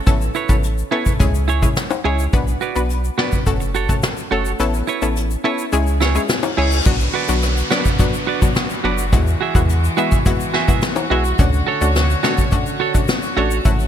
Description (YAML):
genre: dancehall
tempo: 106 BPM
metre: 4/4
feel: straight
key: B dorian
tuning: A4 = 440 Hz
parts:
  - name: analog pluck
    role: accompaniment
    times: 0.1-13.9 s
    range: F#3 to B4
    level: -23 LUFS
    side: left 3 dB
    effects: chorus
  - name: warm sub bass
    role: bass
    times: 0.1-13.9 s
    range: F#1 to E2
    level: -19 LUFS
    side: equal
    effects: none
  - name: vintage brush drum kit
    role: drums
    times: 0.1-13.8 s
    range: crash cymbal, hi-hat, kick drum, rim click, snare drum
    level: -18 LUFS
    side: equal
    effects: none
  - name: egg shaker and timbales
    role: percussion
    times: 0.1-13.9 s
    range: none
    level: -29 LUFS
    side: left 9 dB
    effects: none
  - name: clean electric guitar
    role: arpeggios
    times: 0.3-13.6 s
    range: E4 to E5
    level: -24 LUFS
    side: right 9 dB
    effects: ping-pong delay
  - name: reverse cymbal and downlifter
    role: sound effects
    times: 6.2-11.4 s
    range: none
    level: -28 LUFS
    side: left 1 dB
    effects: none
  - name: warm studio string section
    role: sustained chords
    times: 6.9-13.9 s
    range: C#3 to C#5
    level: -25 LUFS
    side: left 1 dB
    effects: sidechain pumping
room: light reverb, small room ambience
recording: bright 1980s-style digital production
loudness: -15 LUFS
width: side -9 dB against mid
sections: 0.0-6.9 A section; 6.9-13.9 B section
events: kick muted 4.6-6.9; reverse cymbal 6.2-6.9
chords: 0.1 Aadd9; 1.2 C#m; 2.3 Bm; 3.5 F#m; 4.6 Aadd9; 5.7 C#m; 6.9 Bm; 9.1 Eadd9; 11.4 Dmaj7